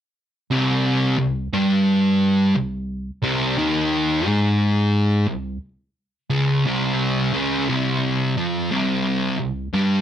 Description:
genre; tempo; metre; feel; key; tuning
metal; 59 BPM; 4/4; swing 66% on 8ths; C minor; A4 = 438 Hz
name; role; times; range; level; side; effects
fuzz guitar; solo; 0.5-10.0 s; C2 to Ab3; -18 LUFS; equal; distortion
room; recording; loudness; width
moderate studio reverb, RT60 0.6 s; none; -18 LUFS; side -10 dB against mid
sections
0.5-8.7 A section; 8.7-10.0 B section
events
none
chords
0.5 Cm; 8.7 C5

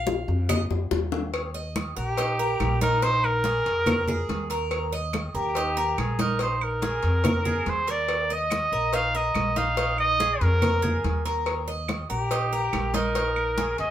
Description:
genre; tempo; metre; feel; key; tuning
latin, Cuban son and guajira; 142 BPM; 4/4; straight; Eb major; A4 = 440 Hz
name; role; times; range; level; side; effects
Cuban tres; arpeggios; 0.0-13.9 s; Eb4 to F5; -30 LUFS; right 1 dB; none
upright bass; bass; 0.0-13.9 s; Bb1 to F2; -28 LUFS; equal; none
bongos and cowbell; percussion; 0.1-13.9 s; none; -32 LUFS; left 4 dB; none
congas; percussion; 0.1-13.8 s; none; -30 LUFS; equal; none
claves; percussion; 0.5-13.6 s; none; -36 LUFS; right 6 dB; none
warm trumpet; melody; 2.0-13.9 s; G4 to F5; -25 LUFS; right 1 dB; none
room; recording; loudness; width
wet studio reverb, RT60 0.5 s; band playing live in one room; -22 LUFS; side -11 dB against mid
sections
0.0-1.3 A section; 1.3-13.9 B section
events
Cuban tres solo 0.0-1.3; drum fill 0.7-1.3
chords
0.0 Bbsus4; 1.3 Eb; 3.0 Bb7sus4; 4.7 Eb; 6.4 Bb7sus4; 8.1 Eb5; 9.8 Bb7sus4; 11.5 Eb; 13.2 Bb7sus4

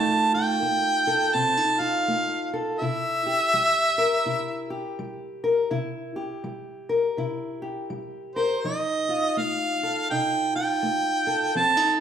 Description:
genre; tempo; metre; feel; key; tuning
blues; 82 BPM; 4/4; swing 61% on 8ths; C mixolydian; A4 = 441 Hz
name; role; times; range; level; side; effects
warm harmonica; melody; 0.0-12.0 s; C5 to A5; -22 LUFS; right 2 dB; none
fingerpicked steel-string acoustic guitar; accompaniment; 0.0-12.0 s; C3 to Bb4; -27 LUFS; left 2 dB; none
room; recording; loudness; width
wet large studio reverb, RT60 1.2 s; band playing live in one room; -22 LUFS; side -8 dB against mid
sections
0.0-12.0 A section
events
none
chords
0.0 F7; 2.8 C7; 8.6 F7

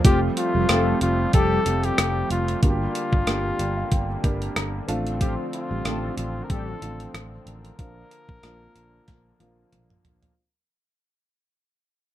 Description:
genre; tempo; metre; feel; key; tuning
1980s-style pop; 93 BPM; 4/4; swing 55% on 16ths; F major; A4 = 441 Hz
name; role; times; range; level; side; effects
warm grand piano; accompaniment; 0.0-10.4 s; F3 to Bb5; -29 LUFS; right 1 dB; none
pipe organ, strings celeste; sustained chords; 0.0-10.3 s; D3 to C4; -33 LUFS; right 4 dB; none
mellow synth brass; stabs; 0.0-6.8 s; F3 to A4; -28 LUFS; left 2 dB; chorus
sustaining fretless electric bass; bass; 0.0-10.3 s; F1 to Bb1; -28 LUFS; equal; none
clean 12-bit digital drum machine; drums; 0.0-10.4 s; hi-hat, kick drum, rim click, snare drum, toms; -21 LUFS; equal; overdrive
warm flugelhorn; melody; 0.1-10.0 s; F4 to Bb4; -27 LUFS; left 2 dB; none
room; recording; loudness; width
light reverb; none; -21 LUFS; side -13 dB against mid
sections
0.0-10.4 A section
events
fade-out 0.0-10.4; grand piano fill 3.3-5.2; drum fill 9.1-10.4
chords
0.0 Fadd9; 2.6 Gm; 4.9 Dm7/A; 7.8 Bb

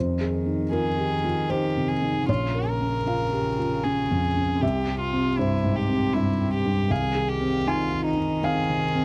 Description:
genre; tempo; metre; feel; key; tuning
neoclassical piano and strings; 78 BPM; 3/4; rubato; F minor; A4 = 440 Hz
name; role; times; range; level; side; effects
clear cello; second line; 0.0-9.0 s; C3 to Eb3; -33 LUFS; equal; none
felt-muted upright piano; accompaniment; 0.0-9.0 s; Bb1 to Ab5; -27 LUFS; equal; none
rich violin; melody; 0.7-9.0 s; Eb4 to Bb4; -30 LUFS; equal; none
room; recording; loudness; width
small room reverb; dry, close 1970s-style studio recording; -25 LUFS; mono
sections
0.0-9.0 A section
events
none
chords
0.0 Fm7; 2.3 Bbm; 4.6 C; 6.9 Fm7/C

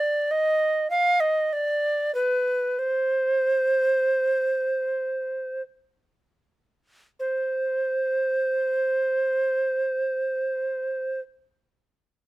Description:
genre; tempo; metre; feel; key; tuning
classical, baroque-style fantasia for unaccompanied recorder; 37-53 BPM; 3/4; rubato; C minor; A4 = 440 Hz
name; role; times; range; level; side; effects
mellow tenor recorder; solo; 0.0-11.2 s; B4 to F5; -22 LUFS; right 1 dB; none
room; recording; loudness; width
little or no reverb; close, detailed microphones; -22 LUFS; side -17 dB against mid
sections
0.0-7.2 A section; 7.2-12.0 B section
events
slowing down 0.0-7.2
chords
none

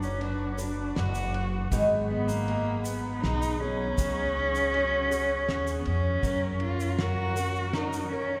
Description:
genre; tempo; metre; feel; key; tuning
acoustic folk duo or small band; 80 BPM; 3/4; straight; F# major; A4 = 441 Hz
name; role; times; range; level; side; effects
rich cello; melody; 0.0-8.4 s; A#3 to F#4; -32 LUFS; equal; none
picked twelve-string acoustic guitar; accompaniment; 0.0-8.4 s; G#2 to B4; -35 LUFS; equal; none
mellow woodwind section; sustained chords; 0.0-8.4 s; G#4 to D6; -43 LUFS; equal; none
upright bass; bass; 0.0-7.7 s; F#1 to F#2; -34 LUFS; equal; none
egg shaker; percussion; 0.0-8.1 s; none; -48 LUFS; equal; none
cloth-damped thuddy drum kit; drums; 0.2-7.9 s; kick drum, ride cymbal, snare drum; -39 LUFS; equal; none
room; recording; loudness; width
wet cathedral reverb, RT60 4.7 s; recorded in a church or concert hall; -28 LUFS; mono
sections
0.0-6.2 A section; 6.2-8.4 B section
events
none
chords
0.0 Bm/F#; 1.7 G#m7; 4.0 C#sus4; 6.2 F#

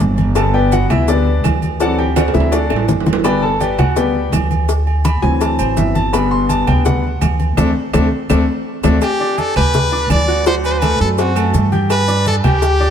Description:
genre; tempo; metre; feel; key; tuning
latin, salsa; 166 BPM; 4/4; straight; G major; A4 = 439 Hz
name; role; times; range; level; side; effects
upright bass; bass; 0.0-12.9 s; G1 to G2; -17 LUFS; right 1 dB; none
congas; percussion; 0.0-12.9 s; none; -21 LUFS; equal; none
cowbell and bongos; percussion; 0.0-12.8 s; none; -26 LUFS; left 7 dB; none
agogo bells and timbales; percussion; 0.2-12.6 s; none; -23 LUFS; right 10 dB; none
maracas; percussion; 0.2-12.8 s; none; -35 LUFS; right 7 dB; none
bright grand piano; accompaniment; 0.3-12.9 s; D3 to G6; -18 LUFS; left 2 dB; none
claves; percussion; 0.4-12.6 s; none; -32 LUFS; right 9 dB; none
brilliant trumpet; melody; 9.0-12.9 s; F#4 to D5; -17 LUFS; left 1 dB; none
room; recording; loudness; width
moderate plate reverb, RT60 3.0 s; heard from further back in the room; -13 LUFS; side -8 dB against mid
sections
0.0-9.0 A section; 9.0-12.9 B section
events
grand piano solo 0.0-9.0; drum fill 2.2-3.2, 7.9-9.0; band accent 7.6-9.0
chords
0.4 G; 1.8 D7; 3.2 G; 4.7 D7; 6.1 G; 7.6 D5; 9.0 G; 10.5 D7; 11.9 G

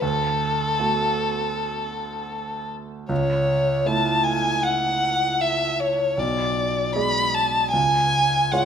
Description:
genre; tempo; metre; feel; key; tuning
classical, romantic duo for violin and grand piano; 78 BPM; 4/4; rubato; unclear; A4 = 440 Hz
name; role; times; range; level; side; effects
warm violin; melody; 0.0-8.7 s; A4 to B5; -21 LUFS; left 1 dB; none
clear grand piano; accompaniment; 0.0-8.7 s; B1 to D5; -25 LUFS; right 3 dB; none
room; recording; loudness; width
moderate recital hall reverb, RT60 1.5 s; none; -20 LUFS; side -8 dB against mid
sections
0.0-8.7 A section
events
none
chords
0.0 D; 3.1 A/C#; 6.2 G#dim/B; 7.7 C#

